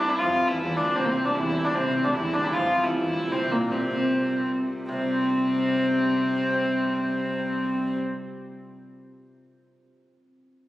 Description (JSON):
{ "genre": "medieval dance", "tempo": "154 BPM", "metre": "3/4", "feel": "straight", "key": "C mixolydian", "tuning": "A4 = 440 Hz", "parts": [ { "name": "warm hurdy-gurdy", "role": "melody", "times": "0.0-8.0 s", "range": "Bb3 to F4", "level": "-24 LUFS", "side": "equal", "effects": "none" }, { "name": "hammered dulcimer", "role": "second line", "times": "0.0-10.1 s", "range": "Bb2 to F3", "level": "-33 LUFS", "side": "right 2 dB", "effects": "none" }, { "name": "warm hurdy-gurdy", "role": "drone", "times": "0.0-8.0 s", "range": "C3 to G3", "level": "-36 LUFS", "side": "right 2 dB", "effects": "none" }, { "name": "warm viola da gamba", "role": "second line", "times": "0.2-8.0 s", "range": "D2 to C3", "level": "-30 LUFS", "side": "left 2 dB", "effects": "none" } ], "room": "wet concert hall reverb, RT60 2.5 s", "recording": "recorded on a phone in the room, club reverb", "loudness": "-22 LUFS", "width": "side -15 dB against mid", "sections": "0.0-4.9 A section; 4.9-7.2 B section", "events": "none", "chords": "none" }